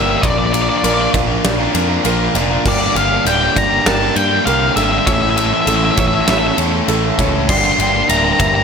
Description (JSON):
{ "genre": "post-rock", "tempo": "99 BPM", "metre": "4/4", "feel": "straight", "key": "unclear", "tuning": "A4 = 440 Hz", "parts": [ { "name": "octave-fuzz lead guitar", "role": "melody", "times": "0.0-8.6 s", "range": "D5 to C6", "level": "-18 LUFS", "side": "left 2 dB", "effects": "distortion, tape echo" }, { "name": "dark analog pad", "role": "sustained chords", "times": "0.0-8.6 s", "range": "Bb3 to D6", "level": "-30 LUFS", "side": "left 1 dB", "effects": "none" }, { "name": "felt-muted upright piano", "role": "arpeggios", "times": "0.0-8.6 s", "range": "A4 to E5", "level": "-25 LUFS", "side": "right 4 dB", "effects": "tape echo" }, { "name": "overdriven electric guitar", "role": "riff", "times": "0.0-8.6 s", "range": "G2 to Bb4", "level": "-20 LUFS", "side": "left 15 dB", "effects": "none" }, { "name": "overdriven semi-hollow guitar", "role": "riff", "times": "0.0-8.6 s", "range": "G2 to Bb4", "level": "-20 LUFS", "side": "right 14 dB", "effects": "spring reverb" }, { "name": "growling picked electric bass", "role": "bass", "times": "0.0-8.6 s", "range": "D1 to G2", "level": "-20 LUFS", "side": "equal", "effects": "overdrive" }, { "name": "huge arena drum kit", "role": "drums", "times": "0.2-8.5 s", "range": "crash cymbal, kick drum, ride cymbal, snare drum", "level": "-19 LUFS", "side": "left 1 dB", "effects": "none" } ], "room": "light reverb, studio reverb", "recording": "none", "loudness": "-12 LUFS", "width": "side -6 dB against mid", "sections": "0.0-8.6 A section", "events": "none", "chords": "0.2 Bb; 2.7 Gm; 5.1 A; 7.5 Gm" }